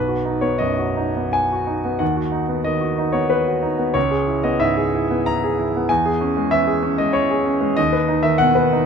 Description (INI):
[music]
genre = classical, romantic character piece for solo piano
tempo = 94 BPM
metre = 3/4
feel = uneven beats, rubato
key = B major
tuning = A4 = 440 Hz
[part]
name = clear grand piano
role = solo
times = 0.0-8.9 s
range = B1 to A#5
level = -17 LUFS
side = equal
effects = none
[sound]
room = moderate large studio reverb, RT60 1.2 s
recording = none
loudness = -17 LUFS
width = side -6 dB against mid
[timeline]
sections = 0.0-8.9 A section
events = none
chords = 0.0 B; 2.0 B/D#; 4.0 C#m7; 5.9 C#m/E; 7.8 B/D#